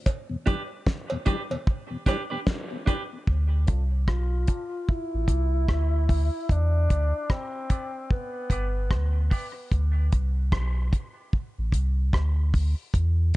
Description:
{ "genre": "dub reggae", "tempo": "74 BPM", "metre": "4/4", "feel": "swing 59% on 16ths", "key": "D dorian", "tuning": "A4 = 443 Hz", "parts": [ { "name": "damped 70s drum kit", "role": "drums", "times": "0.1-13.4 s", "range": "hi-hat, kick drum, rim click, snare drum", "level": "-24 LUFS", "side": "equal", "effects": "none" }, { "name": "cowbell", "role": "percussion", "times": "0.1-2.3 s", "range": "none", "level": "-36 LUFS", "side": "right 2 dB", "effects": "high-pass filter on perc, dub echo" }, { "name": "mellow tonewheel organ", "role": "accompaniment", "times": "0.3-3.2 s", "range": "E2 to D4", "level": "-35 LUFS", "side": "left 3 dB", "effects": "chorus vibrato, slow rotary speaker, high-pass filter" }, { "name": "clean electric guitar", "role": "accompaniment", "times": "0.5-9.5 s", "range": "B3 to D5", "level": "-35 LUFS", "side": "right 4 dB", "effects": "high-pass filter, low-pass filter, dub echo" }, { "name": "warm sub bass", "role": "bass", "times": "3.3-13.3 s", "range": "G1 to E2", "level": "-23 LUFS", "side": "equal", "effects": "none" }, { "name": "warm tenor saxophone", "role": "melody", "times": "4.1-9.3 s", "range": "B3 to F4", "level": "-33 LUFS", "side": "left 1 dB", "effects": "low-pass filter, dub echo" } ], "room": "light reverb, studio reverb", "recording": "dark, warm production, nothing above 10.9 kHz", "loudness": "-23 LUFS", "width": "side -18 dB against mid", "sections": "0.0-3.3 A section; 3.3-13.4 B section", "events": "break 0.1-3.3; filter sweep 0.1-13.4", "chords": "0.1 Em7; 3.3 Dm7; 6.5 Em7; 9.7 D5", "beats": "| 0.06 0.87 1.67 2.47 | 3.28 4.08 4.88 5.69 | 6.50 7.30 8.11 8.91 | 9.72 10.52 11.33 12.13 | 12.94" }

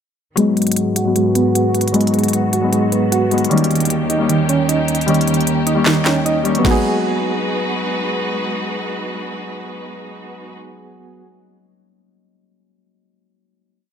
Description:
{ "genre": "hip hop, trap", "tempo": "153 BPM", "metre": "4/4", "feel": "half-time", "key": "G# minor", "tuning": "A4 = 441 Hz", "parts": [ { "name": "Celtic harp", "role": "accompaniment", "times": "0.4-11.3 s", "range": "F#3 to G5", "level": "-19 LUFS", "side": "left 6 dB", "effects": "low-pass filter" }, { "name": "rich studio string section", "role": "sustained chords", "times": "0.4-10.5 s", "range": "D#2 to B4", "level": "-24 LUFS", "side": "equal", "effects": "low-pass filter" }, { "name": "soft electric-piano-like synth keys", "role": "arpeggios", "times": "0.4-11.3 s", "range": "D#3 to G#4", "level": "-19 LUFS", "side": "right 5 dB", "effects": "chorus, tremolo, low-pass filter, tape echo" }, { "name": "trap drum kit", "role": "drums", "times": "0.4-6.7 s", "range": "crash cymbal, handclaps, hi-hat, kick drum, snare drum", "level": "-21 LUFS", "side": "equal", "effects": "none" } ], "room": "light reverb", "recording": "none", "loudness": "-14 LUFS", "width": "side -8 dB against mid", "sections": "0.4-6.6 breakdown; 6.6-9.8 final chord", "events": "filter sweep 0.4-6.6; kick muted 5.1-6.6; harp fill 5.9-6.6", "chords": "0.4 G#m7; 3.5 D#7; 6.6 G#m7", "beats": "| 0.37 0.77 1.16 1.55 | 1.94 2.33 2.73 3.12 | 3.51 3.90 4.29 4.69 | 5.08 5.47 5.86 6.25 | 6.65 7.04 7.43 7.82 | 8.22 8.61 9.00 9.39" }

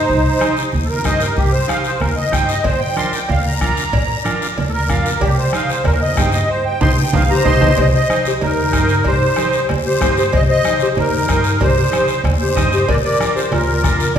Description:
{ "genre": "latin, cumbia", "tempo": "188 BPM", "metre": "4/4", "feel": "straight", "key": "C minor", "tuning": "A4 = 441 Hz", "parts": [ { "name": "musette accordion", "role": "melody", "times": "0.0-14.2 s", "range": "Eb4 to C6", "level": "-18 LUFS", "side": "right 1 dB", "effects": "none" }, { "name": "upright bass", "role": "bass", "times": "0.0-14.2 s", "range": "Bb1 to G2", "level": "-20 LUFS", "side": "equal", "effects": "none" }, { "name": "bombo", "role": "percussion", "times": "0.1-14.2 s", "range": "none", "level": "-22 LUFS", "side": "left 2 dB", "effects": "none" }, { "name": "congas", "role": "percussion", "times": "0.1-14.2 s", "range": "none", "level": "-24 LUFS", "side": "right 2 dB", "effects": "none" }, { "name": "guiro", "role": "percussion", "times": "0.1-14.2 s", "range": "none", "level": "-29 LUFS", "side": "left 6 dB", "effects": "none" }, { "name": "combo organ", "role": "accompaniment", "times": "0.4-14.1 s", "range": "D4 to Eb5", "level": "-24 LUFS", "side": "right 2 dB", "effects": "none" }, { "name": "cowbell and timbales", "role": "percussion", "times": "2.6-14.2 s", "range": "none", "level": "-26 LUFS", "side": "right 4 dB", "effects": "none" }, { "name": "breathy clarinet", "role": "second line", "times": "7.3-14.2 s", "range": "Eb4 to C5", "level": "-21 LUFS", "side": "left 4 dB", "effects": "none" } ], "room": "wet recital hall reverb, RT60 1.5 s", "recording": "recorded in a church or concert hall", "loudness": "-13 LUFS", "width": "side -8 dB against mid", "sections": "0.0-7.8 A section; 7.8-14.2 B section", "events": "accordion solo 0.0-7.8; band accent 6.5-7.8; drum fill 7.1-7.8", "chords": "0.0 Cm; 2.7 Bb; 5.2 Cm; 12.9 Bb", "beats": "| 0.10 0.41 0.73 1.05 | 1.37 1.69 2.01 2.33 | 2.65 2.97 3.29 3.61 | 3.93 4.25 4.57 4.89 | 5.21 5.53 5.85 6.17 | 6.49 6.81 7.13 7.46 | 7.78 8.10 8.41 8.73 | 9.05 9.38 9.70 10.02 | 10.33 10.65 10.97 11.29 | 11.61 11.93 12.25 12.57 | 12.89 13.21 13.52 13.84 | 14.16" }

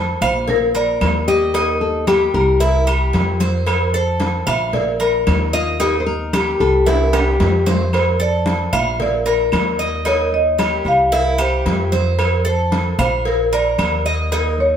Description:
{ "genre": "latin, Cuban son and guajira", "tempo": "113 BPM", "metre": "4/4", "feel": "straight", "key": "unclear", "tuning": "A4 = 440 Hz", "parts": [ { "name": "marimba with medium mallets", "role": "melody", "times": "0.0-14.8 s", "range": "Bb4 to F5", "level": "-20 LUFS", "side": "equal", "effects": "none" }, { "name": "Cuban tres", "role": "arpeggios", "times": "0.0-14.8 s", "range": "Eb4 to F5", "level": "-21 LUFS", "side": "equal", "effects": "none" }, { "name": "upright bass", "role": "bass", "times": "0.0-14.8 s", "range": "Bb1 to F2", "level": "-20 LUFS", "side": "equal", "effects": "none" }, { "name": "agogo bells and timbales", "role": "percussion", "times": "0.2-14.6 s", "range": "none", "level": "-24 LUFS", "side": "right 2 dB", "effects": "none" }, { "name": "claves", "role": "percussion", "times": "0.2-14.1 s", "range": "none", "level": "-31 LUFS", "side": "right 2 dB", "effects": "none" }, { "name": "congas", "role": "percussion", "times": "0.2-14.8 s", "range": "none", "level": "-25 LUFS", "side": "left 1 dB", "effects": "none" }, { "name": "cowbell", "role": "percussion", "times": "0.5-14.6 s", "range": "none", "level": "-26 LUFS", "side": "right 1 dB", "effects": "none" }, { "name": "nylon-string guitar", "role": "second line", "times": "1.3-7.8 s", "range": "F4 to C5", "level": "-20 LUFS", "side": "left 4 dB", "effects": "none" } ], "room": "wet stone room reverb, RT60 1.1 s", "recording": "band playing live in one room", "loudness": "-15 LUFS", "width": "side -8 dB against mid", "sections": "0.0-14.8 A section", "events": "drum fill 6.9-7.9", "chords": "0.5 Bb; 1.5 Eb; 2.6 C7; 3.7 F; 4.7 Bb5; 5.8 Eb; 6.9 C; 7.9 F; 9.0 Bb5; 10.1 Eb; 11.1 C; 12.2 F; 13.3 Bb", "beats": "0.48 1.01 | 1.54 2.08 2.61 3.14 | 3.67 4.20 4.74 5.27 | 5.80 6.33 6.87 7.40 | 7.93 8.46 8.99 9.53 | 10.06 10.59 11.12 11.66 | 12.19 12.72 13.25 13.79 | 14.32" }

